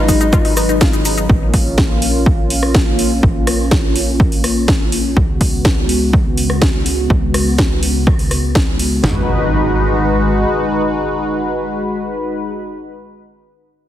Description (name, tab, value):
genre	progressive house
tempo	124 BPM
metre	4/4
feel	straight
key	G# dorian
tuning	A4 = 438 Hz
part	direct-recorded clean electric guitar	melody	0.0-0.5 s	D#4	-22 LUFS	left 2 dB	vintage 12-bit sampler grit, sidechain pumping, dub echo
part	warm analog pad	sustained chords	0.0-12.5 s	C#3 to B4	-18 LUFS	left 1 dB	chorus, sidechain pumping
part	analog pluck	arpeggios	0.0-1.3 s	D#4 to E#4	-21 LUFS	left 7 dB	chorus, vintage 12-bit sampler grit, sidechain pumping, dub echo
part	tight sequencer bass	bass	0.0-10.4 s	G#1 to C#2	-20 LUFS	equal	sidechain pumping
part	house drum kit	drums	0.1-9.2 s	kick drum, snare drum, toms	-15 LUFS	equal	overdrive
part	house drum kit	drums	0.1-8.9 s	cabasa, hi-hat, rim click, snare drum	-19 LUFS	equal	overdrive, sidechain pumping on hats, sidechain pumping on perc
part	impact	sound effects	9.1-12.6 s	none	-24 LUFS	right 1 dB	none
room	light reverb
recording	heavily compressed radio sound, multiband compression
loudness	-12 LUFS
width	side -12 dB against mid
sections	0.0-9.0 A section; 9.0-12.9 B section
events	filter sweep on analog synth bass 0.0-9.0; filter sweep on analog synth pad 0.0-9.0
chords	0.0 G#m7; 1.3 A#m; 5.2 C#7sus4; 9.0 G#m7